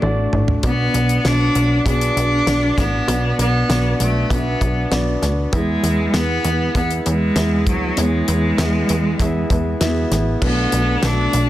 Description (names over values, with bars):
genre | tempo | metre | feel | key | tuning
piano-driven pop | 98 BPM | 4/4 | straight | unclear | A4 = 435 Hz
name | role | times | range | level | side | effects
rich cello | melody | 0.0-11.5 s | F#3 to D4 | -21 LUFS | equal | none
warm concert grand piano | accompaniment | 0.0-11.5 s | A2 to F#5 | -22 LUFS | equal | none
plucky analog bass | bass | 0.0-11.5 s | A1 to E2 | -20 LUFS | equal | none
damped 70s drum kit | drums | 0.0-11.5 s | crash cymbal, hi-hat, kick drum, snare drum, toms | -23 LUFS | equal | none
room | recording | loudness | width
light reverb | dense, heavily limited modern master | -15 LUFS | side -14 dB against mid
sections
0.0-10.4 A section; 10.4-11.5 B section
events
drum fill 0.0-0.6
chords
0.0 D; 0.6 Bm; 10.4 Bm7